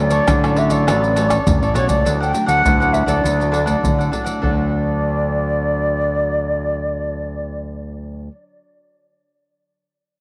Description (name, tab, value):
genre	samba and choro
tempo	101 BPM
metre	4/4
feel	straight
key	D major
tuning	A4 = 437 Hz
part	mellow jazz flute	melody	0.0-7.6 s	C#5 to G5	-22 LUFS	equal	slapback echo
part	nylon-string guitar	accompaniment	0.0-8.4 s	A2 to D4	-28 LUFS	equal	none
part	growling fingered electric bass	bass	0.0-8.3 s	A1 to D3	-23 LUFS	equal	overdrive
part	cavaquinho	accompaniment	0.1-8.3 s	D4 to F#5	-28 LUFS	equal	none
part	maracas, pandeiro, surdo and tamborim	percussion	0.1-4.6 s	none	-24 LUFS	equal	none
room	moderate plate reverb, RT60 3.0 s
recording	none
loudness	-18 LUFS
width	mono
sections	0.0-2.1 A section; 2.1-4.4 B section; 4.4-6.8 C section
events	drum fill 1.3-2.1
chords	0.0 Dmaj7; 2.1 D